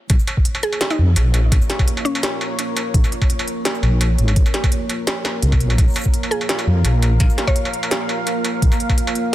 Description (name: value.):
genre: half-time drum and bass.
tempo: 169 BPM.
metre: 4/4.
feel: swing 54% on 16ths, half-time.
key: Bb minor.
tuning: A4 = 440 Hz.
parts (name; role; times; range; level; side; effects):
deep dark ambient pad; sustained chords; 0.7-9.3 s; Bb3 to F5; -25 LUFS; equal; chorus, built-in reverb, vintage 12-bit sampler grit, sidechain pumping.
deep soft wobble bass; bass; 0.1-8.7 s; Ab1 to F2; -15 LUFS; equal; chorus.
electronic kick drum; drums; 0.1-9.0 s; none; -17 LUFS; equal; studio reverb.
industrial drum kit; drums; 0.1-9.2 s; hi-hat, shaker, snare drum, struck metal; -23 LUFS; right 1 dB; studio reverb.
mallet-like synth pluck; melody; 0.6-2.6, 6.3-8.0 s; Db4 to Db5; -26 LUFS; equal; chorus, dub echo.
room: digital ambience.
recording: dense, heavily limited modern master, high-pass filter.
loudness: -16 LUFS.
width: side -14 dB against mid.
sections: 0.1-9.3 A section.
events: drop 0.1-9.3.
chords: 0.1 Bbm.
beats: | 0.10 0.46 0.81 1.17 | 1.52 1.88 2.23 2.58 | 2.94 3.29 3.65 4.00 | 4.36 4.71 5.07 5.42 | 5.78 6.13 6.49 6.85 | 7.20 7.56 7.91 8.27 | 8.62 8.98 9.33.